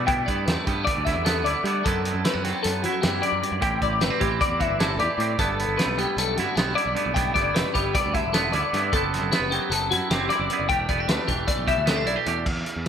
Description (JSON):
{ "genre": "math rock and midwest emo", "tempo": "306 BPM (eighths)", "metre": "9/8", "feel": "straight", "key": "unclear", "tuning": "A4 = 442 Hz", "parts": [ { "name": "twangy electric guitar", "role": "accompaniment", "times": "0.0-12.9 s", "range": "E2 to G4", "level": "-27 LUFS", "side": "right 8 dB", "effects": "lush chorus" }, { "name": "clean electric guitar", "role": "arpeggios", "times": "0.0-12.5 s", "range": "F#4 to G5", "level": "-25 LUFS", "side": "left 5 dB", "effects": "ensemble chorus, digital delay" }, { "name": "modern bright picked electric bass", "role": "bass", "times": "0.0-12.9 s", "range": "E1 to G3", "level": "-30 LUFS", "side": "right 1 dB", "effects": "none" }, { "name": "loose indie drum kit", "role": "drums", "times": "0.1-12.9 s", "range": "crash cymbal, hi-hat, kick drum, snare drum", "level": "-27 LUFS", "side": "equal", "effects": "gated reverb" } ], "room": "moderate lush hall reverb, RT60 2.0 s, small room ambience", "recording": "bright 1980s-style digital production", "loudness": "-21 LUFS", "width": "side -8 dB against mid", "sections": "0.0-12.5 A section", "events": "none", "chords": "0.0 G69; 1.9 D13/F#; 3.6 Am7; 5.4 G69; 8.9 D13/F#; 10.7 Em7" }